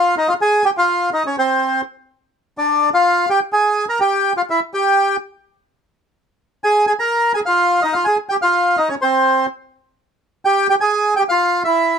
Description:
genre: tango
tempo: 125 BPM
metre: 4/4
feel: rubato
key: F minor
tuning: A4 = 442 Hz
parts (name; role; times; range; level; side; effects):
- bandoneon; solo; 0.0-12.0 s; C4 to Bb5; -14 LUFS; equal; none
room: little or no reverb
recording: close, detailed microphones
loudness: -14 LUFS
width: side -7 dB against mid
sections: 0.0-12.0 A section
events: none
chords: 0.0 Fm7; 0.6 Dbmaj7; 2.5 Bb7; 4.5 Em; 6.4 Fm7; 8.3 Cmadd11; 10.2 N.C.

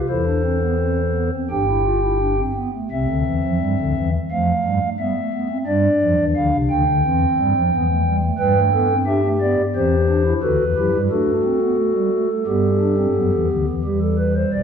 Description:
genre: classical, baroque-style 4-part fugue for pipe organ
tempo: 87 BPM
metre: 4/4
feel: straight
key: C major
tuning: A4 = 443 Hz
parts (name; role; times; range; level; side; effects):
- pipe organ, stopped flute; solo; 0.0-14.6 s; G1 to G5; -17 LUFS; equal; none
room: wet scoring stage reverb, RT60 1.5 s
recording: dark, warm production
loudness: -17 LUFS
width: side -7 dB against mid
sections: 0.0-2.9 A section; 2.9-13.9 B section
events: none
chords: 0.1 C/E; 1.5 G5; 2.9 C; 4.3 F; 5.7 G5; 7.0 C/E; 8.4 G; 9.7 C/E; 11.1 D/A; 12.5 G; 13.9 Em7

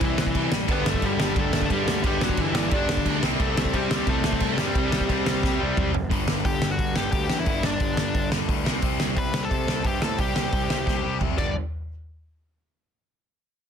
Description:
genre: punk rock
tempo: 177 BPM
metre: 4/4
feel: straight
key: unclear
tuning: A4 = 440 Hz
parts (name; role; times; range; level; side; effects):
- bluesy overdriven lead guitar; melody; 0.0-11.5 s; E3 to B5; -28 LUFS; left 3 dB; distortion
- raw garage guitar; riff; 0.0-11.5 s; G2 to C4; -32 LUFS; right 14 dB; overdrive
- sludgy distorted guitar; riff; 0.0-11.5 s; G2 to C4; -30 LUFS; left 15 dB; overdrive
- fuzz picked electric bass; bass; 0.0-11.5 s; F#1 to C3; -31 LUFS; equal; overdrive
- loose indie drum kit; drums; 0.0-11.5 s; crash cymbal, hi-hat, kick drum, snare drum, toms; -25 LUFS; right 1 dB; none
- high-gain distorted guitar; riff; 0.7-5.9 s; G2 to C4; -31 LUFS; right 1 dB; distortion
room: little or no reverb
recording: dense, heavily limited modern master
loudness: -22 LUFS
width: side -8 dB against mid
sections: 0.0-6.1 A section; 6.1-11.6 B section; 11.6-12.9 C section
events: drum fill 5.4-6.1, 10.9-11.6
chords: 0.0 C; 0.7 G5; 3.2 C5; 6.1 G5; 8.7 C5; 11.4 G5; 11.6 N.C.

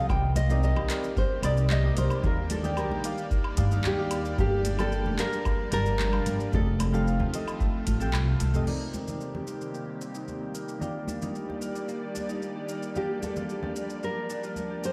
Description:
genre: sunset chillout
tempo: 112 BPM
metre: 4/4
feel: straight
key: C dorian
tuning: A4 = 441 Hz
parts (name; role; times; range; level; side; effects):
- nylon-string guitar; melody; 0.0-8.1, 13.0-14.9 s; G4 to G5; -34 LUFS; equal; delay
- soft electric-piano-like synth keys; accompaniment; 0.0-14.9 s; C3 to A5; -38 LUFS; equal; chorus, tape echo
- airy breathy pad; sustained chords; 0.0-14.9 s; Eb3 to D5; -39 LUFS; equal; chorus
- concert harp; arpeggios; 0.1-14.9 s; A3 to Bb4; -41 LUFS; equal; low-pass filter, tape echo
- upright bass; bass; 0.1-8.6 s; F1 to G2; -29 LUFS; equal; none
- deep house drum kit; drums; 0.1-14.9 s; crash cymbal, handclaps, hi-hat, shaker, woodblock; -40 LUFS; equal; overdrive, studio reverb
- electronic kick drum; drums; 0.1-8.0 s; none; -30 LUFS; equal; studio reverb
- congas; percussion; 0.1-14.7 s; none; -40 LUFS; equal; none
room: light reverb, studio ambience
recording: played on a big sound system in a bare room, stone room reverb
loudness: -28 LUFS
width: mono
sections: 0.0-8.7 A section; 8.7-14.9 B section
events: filter sweep on harp 8.7-14.9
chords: 0.1 Cm7; 2.2 Ebmaj7; 4.4 Gm7; 6.5 F7; 8.7 Cm7; 10.8 Ebmaj7; 13.0 Gm7

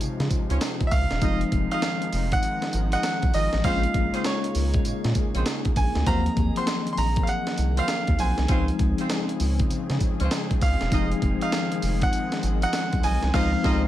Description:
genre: R&B, new jack swing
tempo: 99 BPM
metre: 4/4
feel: swing 64% on 16ths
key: unclear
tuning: A4 = 437 Hz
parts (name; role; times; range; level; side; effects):
- mellow tine electric piano; accompaniment; 0.0-13.9 s; C3 to F4; -29 LUFS; left 5 dB; fast stereo tremolo
- warm analog pad; sustained chords; 0.0-13.9 s; C3 to Ab4; -34 LUFS; equal; chorus
- round analog bass; bass; 0.0-13.9 s; Fb1 to Db3; -25 LUFS; equal; none
- breakbeat sampler-style drum kit; drums; 0.0-13.8 s; crash cymbal, hi-hat, kick drum, snare drum, tambourine; -26 LUFS; equal; vintage 12-bit sampler grit, gated reverb
- dark horn section; stabs; 0.5-13.8 s; C4 to Eb5; -34 LUFS; right 2 dB; none
- bright baby grand piano; melody; 0.9-13.9 s; Db5 to C6; -29 LUFS; right 2 dB; none
room: little or no reverb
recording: none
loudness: -21 LUFS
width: side -13 dB against mid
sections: 0.0-13.9 A section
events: band accent 13.3-13.9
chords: 0.0 Dbmaj7; 1.2 Fm7; 3.6 Bbm9; 6.1 Ebm69; 8.5 Dbmaj7; 10.9 Fm7; 13.3 Dbmaj9

